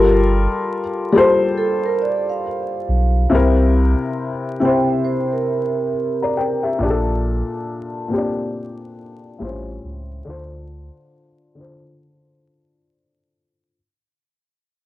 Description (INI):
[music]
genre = hip hop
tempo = 69 BPM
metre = 4/4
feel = swing 64% on 16ths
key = unclear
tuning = A4 = 440 Hz
[part]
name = felt-muted upright piano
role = accompaniment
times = 0.0-13.8 s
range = A2 to Bb5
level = -18 LUFS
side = left 3 dB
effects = cassette tape, low-pass filter
[part]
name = warm sub bass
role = bass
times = 0.0-10.9 s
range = G1 to D2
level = -19 LUFS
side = equal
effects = transformer saturation
[part]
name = vibraphone with medium mallets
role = second line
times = 1.6-6.6 s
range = A4 to G5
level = -23 LUFS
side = right 6 dB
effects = auto-pan, low-pass filter, cassette tape, tape echo
[sound]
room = moderate booth ambience, RT60 0.3 s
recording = home recording on cassette, vinyl crackle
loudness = -16 LUFS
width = side -15 dB against mid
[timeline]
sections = 0.0-13.7 A section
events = fade-out 0.0-13.7; filter sweep on felt piano 0.0-13.7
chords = 0.0 Gm9; 3.3 C7; 6.8 Bbmaj7; 9.4 A7alt; 10.3 Dm7